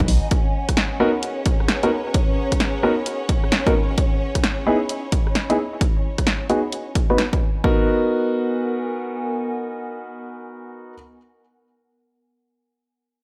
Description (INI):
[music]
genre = UK garage, two-step garage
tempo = 131 BPM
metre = 4/4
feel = swing 64% on 16ths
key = G# minor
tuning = A4 = 438 Hz
[part]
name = rich symphonic violin section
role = sustained chords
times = 0.0-7.7 s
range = C#4 to D#5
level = -32 LUFS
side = equal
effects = sidechain pumping
[part]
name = electronic kick drum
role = drums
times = 0.0-7.8 s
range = none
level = -23 LUFS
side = equal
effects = studio reverb
[part]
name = punchy analog drum machine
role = drums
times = 0.0-7.4 s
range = hi-hat, rim click, snare drum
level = -25 LUFS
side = equal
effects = studio reverb
[part]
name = warbly tape-like pad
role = texture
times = 0.0-11.1 s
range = E3 to B5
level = -35 LUFS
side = equal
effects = chorus, built-in reverb, sidechain pumping
[part]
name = warm concert grand piano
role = stabs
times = 1.0-10.9 s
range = B3 to B4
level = -24 LUFS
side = equal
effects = low-pass filter, delay
[sound]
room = light reverb, digital ambience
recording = none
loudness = -21 LUFS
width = mono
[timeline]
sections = 0.0-7.6 A section; 7.6-11.3 B section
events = fade-out on ambient pad 0.0-7.6; filter sweep on grand piano 0.0-7.6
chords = 0.3 G#m9; 3.7 C#m9; 7.6 G#m9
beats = | 0.31 0.77 1.23 1.69 | 2.15 2.60 3.06 3.52 | 3.98 4.43 4.89 5.35 | 5.81 6.27 6.72 7.18 | 7.64 8.10 8.56 9.02 | 9.47 9.93 10.39 10.85